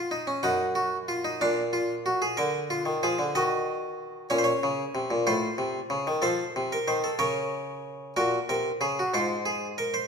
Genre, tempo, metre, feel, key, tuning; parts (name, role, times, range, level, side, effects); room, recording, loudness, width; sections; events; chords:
classical, baroque-style 3-part fugue for harpsichord; 62 BPM (dotted quarters); 6/8; straight; Eb minor; A4 = 440 Hz
harpsichord; solo; 0.0-10.1 s; Gb2 to Gb5; -25 LUFS; equal
moderate recital hall reverb, RT60 1.7 s; minimal, uncompressed stereo recording; -25 LUFS; side -6 dB against mid
0.5-8.2 A section; 8.2-10.1 B section
0.5 Ebm/Gb; 1.4 Bb; 2.4 Bb7/D; 3.3 Ebm; 4.3 Bbm; 5.3 F/A; 6.2 F7; 7.2 Bbm/Db; 8.2 Gb/Bb; 9.1 Fm/Ab